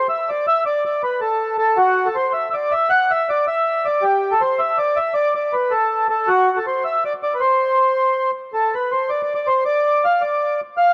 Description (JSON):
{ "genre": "celtic folk", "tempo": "106 BPM (dotted quarters)", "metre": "6/8", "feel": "straight", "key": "A dorian", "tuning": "A4 = 441 Hz", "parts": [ { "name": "mellow accordion", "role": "solo", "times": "0.0-10.9 s", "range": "F#4 to F#5", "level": "-19 LUFS", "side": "equal", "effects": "none" } ], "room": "moderate studio reverb, RT60 0.9 s", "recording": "dark, warm production", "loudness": "-19 LUFS", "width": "mono", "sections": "0.0-8.5 A section; 8.5-10.9 B section", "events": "none", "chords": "none" }